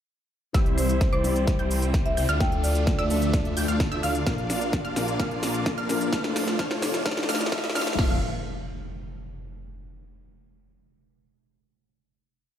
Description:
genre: EDM, festival progressive house.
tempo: 129 BPM.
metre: 4/4.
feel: straight.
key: F major.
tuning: A4 = 439 Hz.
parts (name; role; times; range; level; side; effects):
dark concert grand piano; accompaniment; 0.5-8.2 s; A2 to Bb4; -32 LUFS; left 4 dB; sidechain pumping, tape echo.
wide unison pluck; arpeggios; 0.5-8.2 s; D6 to G6; -34 LUFS; right 2 dB; vintage 12-bit sampler grit, sidechain pumping, tape echo.
supersaw chords; riff; 0.5-8.2 s; G3 to G5; -30 LUFS; equal; phaser, sidechain pumping, low-pass filter, tape echo.
wide detuned saw bass; bass; 0.5-8.2 s; F1 to D2; -29 LUFS; equal; chorus, sidechain pumping.
big-room dance drum kit; drums; 0.5-8.1 s; crash cymbal, kick drum, snare drum; -26 LUFS; equal; none.
big-room dance drum kit; drums; 0.5-8.0 s; hi-hat, shaker, snare drum; -31 LUFS; equal; none.
riser and impact; sound effects; 4.4-9.8 s; none; -36 LUFS; equal; none.
marimba with medium hard mallets; melody; 0.8-4.3 s; C5 to G5; -31 LUFS; left 1 dB; tape echo.
room: moderate plate reverb, RT60 1.3 s.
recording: dreamy mix soaked in reverb, high-pass filter.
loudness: -22 LUFS.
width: side -10 dB against mid.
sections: 0.5-8.0 build; 8.0-9.8 final chord.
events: build-up 0.5-8.0; drum fill 0.5-8.0; filter sweep on synth pluck 0.5-8.0; filter sweep 0.5-8.0; riser 4.4-8.0.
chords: 0.5 C; 2.4 Dm; 4.3 Bb; 6.1 F.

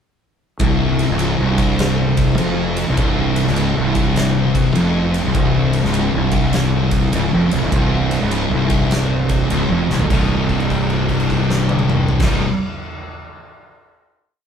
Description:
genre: stoner and doom metal.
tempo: 101 BPM.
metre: 4/4.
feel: swing 65% on 8ths.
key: C minor.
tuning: A4 = 436 Hz.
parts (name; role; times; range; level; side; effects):
distorted electric guitar; riff; 0.6-12.5 s; C2 to Eb4; -23 LUFS; equal; distortion.
thick fuzz guitar; riff; 0.6-12.4 s; C2 to C3; -22 LUFS; left 5 dB; distortion.
thick fuzz guitar; riff; 0.6-12.4 s; C2 to C3; -19 LUFS; right 1 dB; distortion.
fuzz fingered electric bass; bass; 0.6-12.4 s; C1 to F1; -22 LUFS; equal; overdrive.
oversized low-tuned drum kit; drums; 0.6-12.3 s; crash cymbal, kick drum, ride cymbal, snare drum, toms; -22 LUFS; equal; none.
room: moderate large studio reverb, RT60 1.2 s.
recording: band playing live in one room.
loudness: -14 LUFS.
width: side -7 dB against mid.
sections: 0.6-10.1 riff; 10.1-12.5 final chord.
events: drum fill 9.8; held note 10.1-12.1.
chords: 0.6 N.C.; 10.1 Cm.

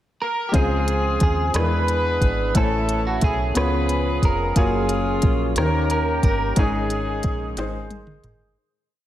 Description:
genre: slow gospel.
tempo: 60 BPM (dotted quarters).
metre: 6/8.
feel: straight.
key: Db major.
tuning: A4 = 441 Hz.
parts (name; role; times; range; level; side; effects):
clean electric guitar; melody; 0.2-7.9 s; Gb4 to B4; -27 LUFS; right 3 dB; tape echo.
warm horn section; melody; 0.2-7.9 s; C4 to B4; -26 LUFS; left 2 dB; slapback echo, tape echo.
clear concert grand piano; accompaniment; 0.5-8.6 s; Ab2 to G#5; -26 LUFS; left 2 dB; slapback echo.
tonewheel organ; sustained chords; 0.5-8.6 s; Db3 to C5; -30 LUFS; right 2 dB; fast rotary speaker, overdrive.
deep dub fingered electric bass; bass; 0.5-8.6 s; F1 to E2; -25 LUFS; equal; none.
organic electronic drum kit; drums; 0.5-8.4 s; hi-hat, kick drum, rim click, snare drum, toms; -22 LUFS; equal; none.
room: moderate lush hall reverb, RT60 1.7 s, digital ambience.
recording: big arena sound.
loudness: -18 LUFS.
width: side -12 dB against mid.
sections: 0.0-0.5 pickup bar; 0.5-8.6 verse.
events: fade-out 6.6-8.6; drum fill 7.6-8.6.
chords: 0.0 N.C.; 0.5 Dbmaj7; 1.5 E7; 2.5 Amaj7; 3.6 Db7; 4.6 Gbmaj7; 5.6 Eb7; 6.6 Absus4; 7.6 Ab.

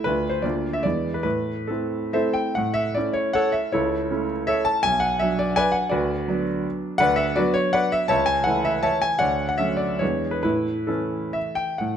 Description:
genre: classical, romantic triple-time dance for piano with dotted rhythms.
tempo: 125-176 BPM.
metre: 3/4.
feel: rubato.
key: A major.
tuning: A4 = 437 Hz.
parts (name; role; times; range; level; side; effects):
clear concert grand piano; solo; 0.0-12.0 s; B1 to A5; -20 LUFS; equal; none.
room: moderate recital hall reverb, RT60 1.5 s.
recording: close, detailed microphones.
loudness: -20 LUFS.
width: side -8 dB against mid.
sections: 0.0-2.6 A section; 2.6-11.8 B section.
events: none.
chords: 0.1 Dm; 0.4 Bb/D; 0.9 E7; 1.3 Am; 2.6 A; 3.7 A/C#; 4.8 Bm; 5.9 Bm/D; 8.1 A/C#; 9.2 Dmaj7; 10.0 E7; 10.4 A.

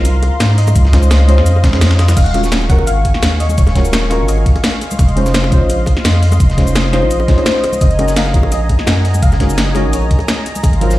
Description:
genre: liquid drum and bass.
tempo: 170 BPM.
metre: 4/4.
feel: swing 53% on 16ths.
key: Eb dorian.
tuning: A4 = 440 Hz.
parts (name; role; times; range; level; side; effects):
soft round pluck; melody; 0.0-4.8, 7.5-10.4 s; C5 to Gb5; -22 LUFS; left 2 dB; lush chorus, digital delay.
deep mellow chord stab; accompaniment; 0.0-11.0 s; Gb3 to C5; -19 LUFS; equal; chorus, tape echo.
warm analog pad; sustained chords; 0.0-11.0 s; Eb5 to Db6; -24 LUFS; left 1 dB; chorus, sidechain pumping.
saturated sub bass; bass; 0.0-11.0 s; Eb1 to Ab2; -13 LUFS; equal; none.
drum and bass drum kit; drums; 0.0-11.0 s; crash cymbal, hi-hat, shaker, snare drum; -19 LUFS; equal; none.
dusty soul sampler-style drum kit; drums; 0.1-11.0 s; hi-hat, snare drum; -26 LUFS; equal; high-pass filter on hats, high-pass filter on snare.
bongos and congas; percussion; 0.1-11.0 s; none; -27 LUFS; equal; none.
electronic kick drum; drums; 0.8-10.7 s; none; -12 LUFS; equal; none.
room: light reverb, digital ambience.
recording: played on a big sound system in a bare room, stone room reverb.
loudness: -10 LUFS.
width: side -16 dB against mid.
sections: 0.0-2.2 A section; 2.2-11.0 A section.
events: drop 0.0-2.2, 2.2-11.0.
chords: 0.0 Ab13; 0.8 Dbmaj9; 2.2 Ebm11; 4.8 Dbmaj9/F; 7.8 Gb6.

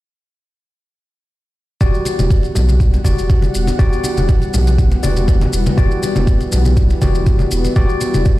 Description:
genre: afro house.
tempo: 121 BPM.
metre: 4/4.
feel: swing 53% on 16ths.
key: E minor.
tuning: A4 = 440 Hz.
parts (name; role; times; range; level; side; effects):
warm analog pad; sustained chords; 1.8-8.4 s; E3 to F#5; -24 LUFS; equal; chorus, sidechain pumping.
tine electric piano; stabs; 1.8-8.4 s; F#4 to D5; -22 LUFS; left 2 dB; medium stereo tremolo, sidechain pumping, digital delay.
warm sub bass; bass; 1.8-8.4 s; E1 to B1; -17 LUFS; equal; sidechain pumping.
electronic kick drum; drums; 1.8-8.4 s; none; -14 LUFS; equal; small room reverb.
shaker; drums; 1.8-8.4 s; none; -29 LUFS; left 1 dB; small room reverb.
congas; percussion; 2.1-8.2 s; none; -22 LUFS; left 1 dB; none.
room: digital ambience.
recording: played on a big sound system in a bare room, stone room reverb.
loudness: -12 LUFS.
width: side -17 dB against mid.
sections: 1.8-8.4 A section.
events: none.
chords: 1.8 Em9.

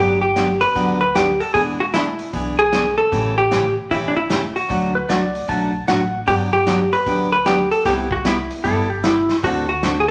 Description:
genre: country, western swing.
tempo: 152 BPM.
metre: 4/4.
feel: swing 64% on 8ths.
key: G major.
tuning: A4 = 441 Hz.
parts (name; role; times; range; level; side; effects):
vintage hollow-body jazz guitar; melody; 0.0-10.1 s; D4 to B4; -20 LUFS; equal; none.
picked steel-string acoustic guitar; accompaniment; 0.0-9.9 s; C3 to A4; -25 LUFS; equal; none.
upright bass; bass; 0.0-10.1 s; E1 to D2; -31 LUFS; equal; none.
vintage drum kit; drums; 0.4-10.1 s; hi-hat, kick drum, snare drum; -29 LUFS; equal; none.
clean lap steel guitar; second line; 5.0-6.2, 8.6-9.4 s; E4 to A5; -23 LUFS; equal; none.
room: moderate large studio reverb, RT60 1.0 s.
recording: none.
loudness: -19 LUFS.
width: mono.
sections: 0.0-10.1 A section.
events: none.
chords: 0.0 Gmaj7; 1.5 E7; 3.1 A7; 4.7 D; 6.3 Gmaj7; 7.9 Cmaj7; 9.4 D7.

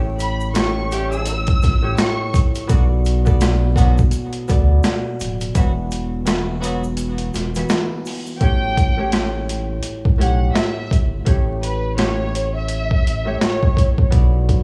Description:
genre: hip hop, boom-bap hip-hop.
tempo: 84 BPM.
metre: 4/4.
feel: swing 59% on 16ths.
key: unclear.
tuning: A4 = 436 Hz.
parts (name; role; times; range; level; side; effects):
concert harp; accompaniment; 0.0-14.6 s; A2 to E5; -27 LUFS; equal; high-pass filter, low-pass filter.
soft dub sub bass; bass; 0.0-14.6 s; D1 to D2; -22 LUFS; equal; none.
clear studio violin section; melody; 0.2-2.3, 8.4-13.7 s; B4 to E6; -28 LUFS; equal; high-pass filter, low-pass filter, analog delay.
boom bap sampler-style drum kit; drums; 0.2-14.6 s; hi-hat, kick drum, rim click, snare drum; -21 LUFS; equal; overdrive.
tube shaker; percussion; 0.2-8.4 s; none; -45 LUFS; equal; none.
mellow horn section; stabs; 0.9-6.8 s; D3 to G4; -32 LUFS; equal; high-pass filter, low-pass filter, analog delay.
room: small room ambience.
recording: vinyl crackle.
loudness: -19 LUFS.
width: mono.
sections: 0.0-8.4 A section; 8.4-14.6 B section.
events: break 7.0-8.4.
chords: 0.0 A7; 2.7 Bm7; 5.6 Esus2; 8.4 A7; 14.1 Bm7.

